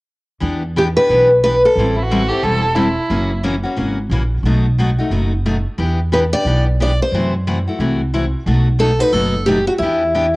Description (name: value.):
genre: acoustic string swing (jazz manouche).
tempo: 179 BPM.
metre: 4/4.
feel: swing 60% on 8ths.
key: E minor.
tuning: A4 = 441 Hz.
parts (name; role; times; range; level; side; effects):
picked steel-string acoustic guitar; accompaniment; 0.4-10.4 s; B2 to A4; -20 LUFS; left 2 dB; cassette tape.
upright bass; bass; 0.4-10.3 s; E1 to F#2; -18 LUFS; equal; none.
picked steel-string acoustic guitar; melody; 0.8-1.9, 6.1-10.4 s; E4 to D5; -14 LUFS; equal; cassette tape.
warm violin; second line; 2.0-3.4 s; E4 to A4; -19 LUFS; right 2 dB; cassette tape.
room: moderate spring reverb, RT60 1.6 s, small room ambience.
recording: home recording on cassette.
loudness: -14 LUFS.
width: side -22 dB against mid.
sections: 0.4-10.4 A section.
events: none.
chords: 0.4 Em7; 1.8 Am7; 3.1 F#7; 4.4 B7; 5.8 Em7; 7.1 F#m7b5; 8.5 B7; 9.8 Em7.